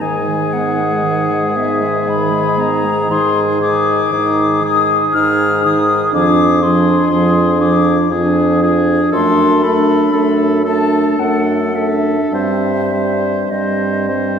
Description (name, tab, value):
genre	classical, slow romantic movement for wind quintet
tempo	51-62 BPM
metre	3/4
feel	rubato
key	G# minor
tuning	A4 = 441 Hz
part	concert flute	melody	0.0-14.4 s	Eb5 to F6	-19 LUFS	left 5 dB	none
part	warm oboe	second line	0.0-14.4 s	Ab4 to C5	-20 LUFS	left 1 dB	none
part	mellow French horn	accompaniment	0.0-14.4 s	Eb3 to A3	-20 LUFS	equal	none
part	mellow clarinet	accompaniment	0.0-14.4 s	D#3 to Eb4	-18 LUFS	right 3 dB	none
part	warm bassoon	bass	0.0-14.4 s	F2 to Ab2	-18 LUFS	right 1 dB	none
room	wet scoring stage reverb, RT60 1.9 s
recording	heard from further back in the room, faint mains hum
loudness	-12 LUFS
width	side -7 dB against mid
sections	0.0-14.4 A section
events	none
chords	0.0 G#m; 3.1 Ab5; 6.1 Ddim/F; 9.1 D/F#; 12.3 Cm/G